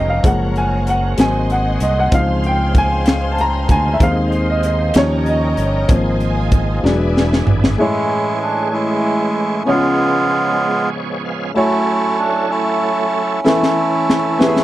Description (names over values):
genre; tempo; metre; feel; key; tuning
slow gospel; 64 BPM (dotted quarters); 6/8; straight; Ab major, A major from 7.8 s; A4 = 441 Hz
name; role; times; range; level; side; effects
warm upright piano; accompaniment; 0.0-14.6 s; A2 to Bb5; -19 LUFS; left 1 dB; none
bright tonewheel organ; sustained chords; 0.0-14.6 s; Db3 to E#5; -25 LUFS; right 2 dB; slow rotary speaker, overdrive, chorus vibrato
warm studio string section; sustained chords; 0.0-7.8 s; Ab4 to C6; -28 LUFS; left 3 dB; none
fingered electric bass; bass; 0.0-7.8 s; E1 to Eb2; -18 LUFS; equal; none
crisp fusion drum kit; drums; 0.2-7.8, 13.5-14.6 s; hi-hat, kick drum, snare drum, toms; -16 LUFS; equal; none
melodica; melody; 7.8-14.6 s; G#3 to E#4; -16 LUFS; right 2 dB; none
room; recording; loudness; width
little or no reverb; none; -14 LUFS; side -14 dB against mid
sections
0.0-7.8 A section; 7.8-14.6 B section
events
upright piano solo 0.0-7.8; drum fill 6.8-7.8, 13.4-14.6; tonewheel organ fill 10.6-11.6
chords
0.2 Gbmaj7; 1.2 Ab7; 2.1 Dbmaj7; 4.0 Ab/Eb; 5.0 Eb7; 5.9 Ab6; 6.8 E7; 7.8 Amaj7; 9.7 C#7; 11.6 F#m7; 13.4 A/E